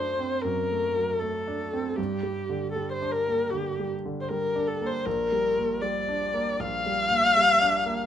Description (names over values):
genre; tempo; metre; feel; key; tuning
classical, romantic duo for viola and grand piano; 78 BPM; 4/4; rubato; G minor; A4 = 440 Hz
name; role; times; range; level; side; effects
dark viola; melody; 0.0-8.1 s; G4 to F5; -25 LUFS; left 2 dB; none
clear grand piano; accompaniment; 0.0-8.1 s; Bb1 to D4; -31 LUFS; right 2 dB; none
room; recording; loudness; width
light reverb; minimal, uncompressed stereo recording; -24 LUFS; side -10 dB against mid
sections
0.0-8.1 A section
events
none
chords
0.0 D7/F#; 2.0 Gm; 5.1 Gm/Bb